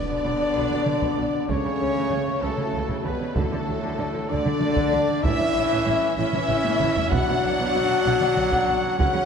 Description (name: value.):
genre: cinematic, epic orchestral film score.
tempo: 64 BPM (dotted quarters).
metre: 6/8.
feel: straight.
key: B minor.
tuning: A4 = 441 Hz.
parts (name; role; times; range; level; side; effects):
warm symphonic violin section; melody; 0.0-9.3 s; A4 to F#5; -32 LUFS; left 4 dB; none.
mellow hollow concert flute; second line; 0.0-9.3 s; A4 to F#5; -32 LUFS; left 3 dB; none.
warm symphonic violin section; second line; 0.0-9.3 s; A4 to F#5; -32 LUFS; left 4 dB; none.
clear symphonic viola section; accompaniment; 0.0-9.3 s; F#3 to D4; -32 LUFS; right 2 dB; none.
bright trombone section; sustained chords; 0.0-9.3 s; A2 to F#3; -32 LUFS; right 4 dB; none.
dark French horn section; sustained chords; 0.0-9.3 s; A3 to F#4; -25 LUFS; left 4 dB; none.
warm trumpet; stabs; 0.0-9.3 s; A4 to F#5; -30 LUFS; right 2 dB; none.
impact; sound effects; 0.0-1.5 s; none; -40 LUFS; right 1 dB; none.
warm symphonic cello section; bass; 0.1-9.2 s; A2 to D3; -32 LUFS; right 3 dB; none.
warm studio double bass section; bass; 0.3-9.1 s; A1 to D2; -32 LUFS; right 4 dB; none.
taiko ensemble; drums; 0.7-9.3 s; none; -29 LUFS; right 1 dB; none.
room: wet concert hall reverb, RT60 2.5 s.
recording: none.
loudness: -20 LUFS.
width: side -6 dB against mid.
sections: 0.0-9.3 A section.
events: impact 0.0-1.5; drum fill 6.7-7.1.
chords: 0.0 Bm; 1.5 F#m/C#; 3.4 D; 5.2 A; 7.1 Bm.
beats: 0.56 | 1.50 2.43 | 3.37 4.31 | 5.25 6.18 | 7.12 8.06 | 8.99.